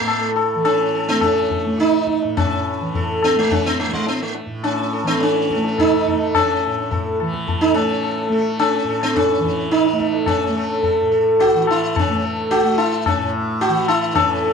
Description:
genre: indian classical, Hindustani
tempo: 106 BPM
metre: 7/4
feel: straight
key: A raga yaman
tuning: A4 = 444 Hz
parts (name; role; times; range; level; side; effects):
- sitar; melody; 0.0-14.5 s; G#3 to A4; -18 LUFS; right 1 dB; none
- tanpura; drone; 0.0-14.5 s; A2 to A3; -25 LUFS; right 1 dB; none
- tabla; percussion; 0.1-14.4 s; none; -22 LUFS; left 6 dB; none
room: moderate small room reverb, RT60 0.5 s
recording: dark, warm production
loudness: -16 LUFS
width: side -6 dB against mid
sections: 0.0-14.2 A section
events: speeding up 0.0-14.5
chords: none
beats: 0.06 0.64 1.21 1.78 | 2.36 2.93 3.50 4.07 4.64 5.21 5.77 | 6.34 6.90 7.47 8.03 8.59 9.15 9.71 | 10.27 10.83 11.38 11.94 12.49 13.05 13.60 | 14.15

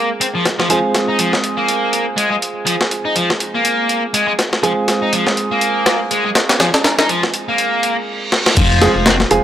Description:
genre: breakbeat, breaks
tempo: 122 BPM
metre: 4/4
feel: swing 57% on 16ths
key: F minor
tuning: A4 = 440 Hz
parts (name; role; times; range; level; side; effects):
- distorted electric guitar; riff; 0.0-9.1 s; F3 to Eb4; -18 LUFS; left 1 dB; distortion, overdrive, vintage 12-bit sampler grit, analog delay
- warm baby grand piano; stabs; 0.0-9.4 s; Ab3 to Ab4; -20 LUFS; right 3 dB; low-pass filter, analog delay
- breakbeat sampler-style drum kit; drums; 0.2-9.4 s; crash cymbal, hi-hat, kick drum, snare drum; -15 LUFS; left 1 dB; high-pass filter on hats, high-pass filter on snare, high-pass filter on cymbals, high-pass filter on kick
- reverse cymbal and impact; sound effects; 8.0-9.4 s; none; -24 LUFS; right 2 dB; none
- fat analog bass; bass; 8.6-9.4 s; F1; -18 LUFS; left 1 dB; none
room: light reverb, digital ambience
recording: dry, gritty hardware recording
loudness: -13 LUFS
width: side -11 dB against mid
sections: 0.0-8.6 A section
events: reverse cymbal 8.0-8.6; drum fill 8.3; impact 8.6-9.4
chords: 0.0 Fm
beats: 0.21 | 0.70 1.19 1.68 2.17 | 2.67 3.16 3.65 4.14 | 4.63 5.13 5.62 6.11 | 6.60 7.09 7.58 8.08 | 8.57 9.06

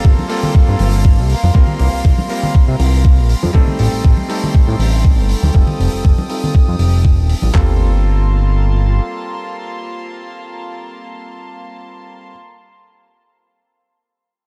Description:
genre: nu-disco, nu disco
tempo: 120 BPM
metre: 4/4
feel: swing 54% on 16ths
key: G minor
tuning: A4 = 440 Hz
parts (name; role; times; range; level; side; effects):
- bright electric grand piano; accompaniment; 0.0-12.3 s; G3 to Bb4; -27 LUFS; equal; sidechain pumping, low-pass filter, dub echo
- warm studio violin section; sustained chords; 0.0-12.3 s; Bb3 to Eb6; -30 LUFS; equal; sidechain pumping
- fat analog bass; bass; 0.0-9.0 s; Eb1 to C3; -16 LUFS; equal; sidechain pumping
- clean 12-bit digital drum machine; drums; 0.0-7.7 s; handclaps, kick drum, toms; -13 LUFS; equal; small room ambience
- congas; percussion; 0.2-7.5 s; none; -25 LUFS; equal; none
- hi-hat; drums; 0.3-7.4 s; none; -32 LUFS; equal; small room ambience
room: small room ambience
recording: dark, warm production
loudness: -14 LUFS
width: mono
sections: 0.0-7.5 A section; 7.5-11.5 B section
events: filter sweep on electric grand piano 0.0-7.5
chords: 0.0 Gm11; 1.3 C7sus4; 3.5 Am7b5; 5.5 F9; 7.5 Gm11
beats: 0.04 0.54 1.04 | 1.54 2.04 2.54 3.04 | 3.54 4.04 4.54 5.04 | 5.54 6.04 6.54 7.04 | 7.54 8.04 8.54 9.04 | 9.54 10.04 10.54 11.04

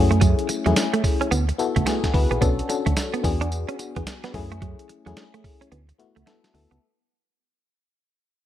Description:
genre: R&B, new jack swing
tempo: 109 BPM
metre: 4/4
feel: swing 62% on 16ths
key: unclear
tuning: A4 = 438 Hz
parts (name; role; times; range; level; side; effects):
- FM electric piano with tremolo; accompaniment; 0.0-6.8 s; A3 to B4; -26 LUFS; left 6 dB; none
- solid FM bass; bass; 0.0-6.8 s; A#1 to F#2; -24 LUFS; right 1 dB; none
- direct-recorded clean electric guitar; riff; 0.1-6.8 s; F#3 to D4; -27 LUFS; right 6 dB; analog chorus
- dusty soul sampler-style drum kit; drums; 0.1-6.8 s; hi-hat, kick drum, snare drum, tambourine; -24 LUFS; right 1 dB; none
room: light reverb, digital ambience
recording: bright 1980s-style digital production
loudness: -20 LUFS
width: side -12 dB against mid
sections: 0.0-6.8 A section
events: fade-out 0.0-6.8; break 5.7-6.8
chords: 0.0 F#m7; 1.3 D6; 2.4 Bm7; 3.2 E7; 4.3 F#m7; 5.7 D6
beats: | 0.21 0.76 1.31 1.86 | 2.42 2.97 3.52 4.07 | 4.62 5.17 5.72 6.27

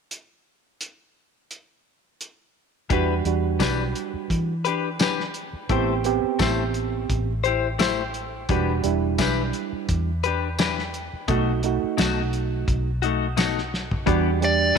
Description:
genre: straight-eighth soul blues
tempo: 86 BPM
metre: 4/4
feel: swing 54% on 16ths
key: E minor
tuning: A4 = 443 Hz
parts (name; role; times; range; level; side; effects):
- cloth-damped thuddy drum kit; drums; 0.1-14.6 s; hi-hat, kick drum, snare drum, tambourine, toms; -26 LUFS; equal; none
- barky reed electric piano; accompaniment; 2.9-14.8 s; G3 to G4; -26 LUFS; right 14 dB; none
- direct-recorded clean electric guitar; stabs; 2.9-14.8 s; B2 to C5; -26 LUFS; left 10 dB; lush chorus
- vintage muted fingered electric bass; bass; 2.9-14.7 s; E1 to E3; -27 LUFS; equal; none
- dark smooth lead guitar; melody; 14.4-14.8 s; D5; -18 LUFS; equal; overdrive
room: moderate plate reverb, RT60 2.8 s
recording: 1960s-style stereo with parts hard left and right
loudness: -21 LUFS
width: side -6 dB against mid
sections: 0.1-2.9 A section; 2.9-14.1 B section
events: drum fill 13.7-14.1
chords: 0.1 N.C.; 2.9 Em7; 5.7 Am7; 8.5 Em7; 11.3 B7; 14.1 Em7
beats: | 0.11 0.81 1.51 2.21 | 2.91 3.61 4.31 5.01 | 5.71 6.40 7.10 7.80 | 8.50 9.20 9.89 10.59 | 11.29 11.98 12.68 13.38 | 14.07 14.77

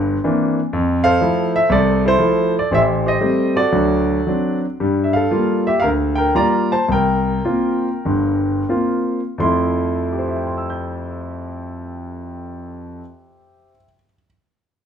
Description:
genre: solo jazz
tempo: 82-122 BPM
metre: 4/4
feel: swing 69% on 8ths, rubato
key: F major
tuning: A4 = 440 Hz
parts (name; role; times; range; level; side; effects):
- clear concert grand piano; solo; 0.0-14.3 s; G1 to G6; -16 LUFS; equal; none
room: moderate large studio reverb, RT60 1.1 s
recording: band playing live in one room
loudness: -15 LUFS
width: side -8 dB against mid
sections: 0.0-4.8 A section; 4.8-9.4 B section; 9.4-14.9 C section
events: slowing down 4.8-9.4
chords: 0.0 C9; 0.7 Fmaj7; 2.7 Am7b5; 3.7 D7; 4.8 Gm7; 6.9 C7sus4; 9.4 Fmaj7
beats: 0.22 | 0.71 1.20 1.70 2.20 | 2.70 3.21 3.72 4.25 | 4.78 5.30 5.82 6.34 | 6.88 7.45 8.04 8.69 | 9.40 10.12 10.84 11.55 | 12.27 12.98 13.69

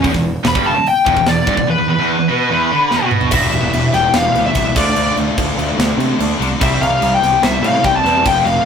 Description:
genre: heavy metal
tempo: 146 BPM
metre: 4/4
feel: straight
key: E minor, E phrygian from 3.3 s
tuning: A4 = 439 Hz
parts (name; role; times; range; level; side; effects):
- high-gain lead guitar; melody; 0.0-8.7 s; B4 to B5; -15 LUFS; left 2 dB; distortion
- fuzz guitar; riff; 0.0-8.7 s; E2 to F4; -22 LUFS; right 1 dB; distortion
- heavy high-gain guitar; riff; 0.0-3.3 s; E2 to D3; -19 LUFS; right 6 dB; distortion
- scooped high-gain guitar; riff; 0.0-8.6 s; E2 to D4; -21 LUFS; left 3 dB; distortion
- fuzz picked electric bass; bass; 0.0-8.6 s; E1 to C3; -21 LUFS; right 1 dB; overdrive
- tight metal drum kit; drums; 0.0-8.6 s; crash cymbal, hi-hat, kick drum, snare drum, toms; -20 LUFS; right 1 dB; none
room: moderate small room reverb, RT60 0.5 s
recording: rough rehearsal-room recording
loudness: -12 LUFS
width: side -7 dB against mid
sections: 0.0-3.3 A section; 3.3-8.7 B section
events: lead electric guitar solo 0.0-3.3; drum fill 2.9-3.3; half time 3.3-8.7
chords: 0.0 Em; 4.8 Dm; 6.6 C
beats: | 0.04 0.45 0.86 1.27 | 1.68 2.09 2.50 2.91 | 3.32 3.73 4.14 4.55 | 4.96 5.37 5.78 6.19 | 6.60 7.01 7.42 7.83 | 8.24

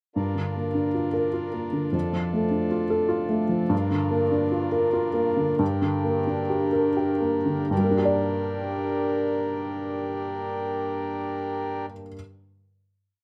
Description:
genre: neoclassical piano and strings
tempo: 81-102 BPM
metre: 3/4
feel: rubato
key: G minor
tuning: A4 = 440 Hz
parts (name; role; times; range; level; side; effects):
- dark upright piano; accompaniment; 0.2-12.2 s; F2 to D5; -26 LUFS; equal; none
- pedal harmonium; sustained chords; 0.2-11.9 s; D4 to Bb4; -34 LUFS; equal; none
room: moderate large studio reverb, RT60 0.9 s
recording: none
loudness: -25 LUFS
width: mono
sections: 0.2-7.7 theme; 7.7-12.1 final chord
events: slowing down 2.8-7.7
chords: 0.2 Gm7; 1.9 Dm/F; 3.7 Gm7; 5.6 Gm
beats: | 0.15 0.75 1.34 | 1.94 2.53 3.12 | 3.71 4.32 4.95 | 5.60 6.28 6.98 | 7.71 8.44 9.18 | 9.91 10.65 11.39

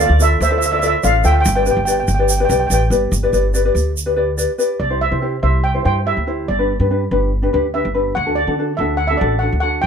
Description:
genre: calypso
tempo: 143 BPM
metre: 4/4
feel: straight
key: unclear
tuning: A4 = 440 Hz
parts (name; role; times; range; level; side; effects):
- steel pan; melody; 0.0-9.9 s; A4 to G5; -19 LUFS; right 2 dB; none
- ukulele; accompaniment; 0.0-9.8 s; D4 to F5; -19 LUFS; left 2 dB; none
- upright bass; bass; 0.0-9.9 s; G1 to D3; -18 LUFS; equal; none
- egg shaker; percussion; 0.0-4.7 s; none; -25 LUFS; right 6 dB; none
room: moderate studio reverb, RT60 0.5 s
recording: none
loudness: -14 LUFS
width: side -7 dB against mid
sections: 0.0-3.1 A section; 3.1-4.8 B section; 4.8-9.9 C section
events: none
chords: 0.0 Dmadd9; 1.5 G; 4.8 Cadd9; 6.5 G; 8.2 D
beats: 0.20 0.62 1.04 | 1.46 1.88 2.29 2.71 | 3.13 3.55 3.97 4.39 | 4.81 5.23 5.65 6.07 | 6.49 6.91 7.33 7.75 | 8.17 8.59 9.00 9.42 | 9.84

